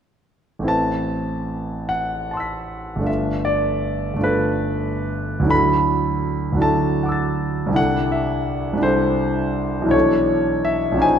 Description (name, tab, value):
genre	classical, impressionist solo piano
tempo	46-56 BPM (dotted quarters)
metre	6/8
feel	rubato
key	A dorian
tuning	A4 = 440 Hz
part	clear concert grand piano	solo	0.6-11.2 s	G1 to B6	-18 LUFS	equal	none
room	moderate scoring stage reverb, RT60 1.6 s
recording	none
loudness	-18 LUFS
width	side -8 dB against mid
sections	0.7-11.2 A section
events	none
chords	0.7 Amadd9; 3.1 G9; 5.5 D69; 7.8 C69; 9.9 Bm11